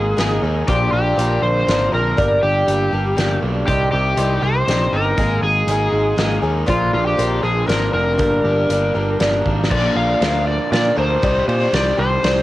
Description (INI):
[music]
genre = folk rock and heartland rock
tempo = 120 BPM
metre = 3/4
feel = straight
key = unclear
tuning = A4 = 440 Hz
[part]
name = overdriven slide guitar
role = melody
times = 0.0-12.4 s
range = F4 to F5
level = -20 LUFS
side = left 1 dB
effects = cassette tape
[part]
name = picked twelve-string acoustic guitar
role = accompaniment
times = 0.0-12.4 s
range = G2 to Bb4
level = -21 LUFS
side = left 1 dB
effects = cassette tape
[part]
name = crunchy overdriven guitar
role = riff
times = 0.0-12.4 s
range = G2 to Ab4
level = -26 LUFS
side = right 2 dB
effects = spring reverb, cassette tape
[part]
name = picked electric bass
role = bass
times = 0.0-12.4 s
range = F1 to Bb2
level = -20 LUFS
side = equal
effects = none
[part]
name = loose indie drum kit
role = drums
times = 0.2-12.4 s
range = crash cymbal, hi-hat, kick drum, ride cymbal, snare drum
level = -23 LUFS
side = equal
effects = cassette tape
[sound]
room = moderate booth ambience, RT60 0.2 s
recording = home recording on cassette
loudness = -15 LUFS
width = side -16 dB against mid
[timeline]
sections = 0.0-9.7 A section; 9.7-12.4 B section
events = drum fill 9.5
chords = 0.0 Absus2; 0.7 Bbadd9; 2.2 Gm; 3.7 Cm; 5.2 Absus2; 6.7 Bbadd9; 8.2 Gm; 9.7 Bb; 11.2 Cmadd9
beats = 0.17 | 0.67 1.17 1.67 | 2.17 2.67 3.17 | 3.67 4.17 4.67 | 5.18 5.68 6.18 | 6.68 7.18 7.69 | 8.19 8.70 9.20 | 9.71 10.21 10.72 | 11.23 11.73 12.24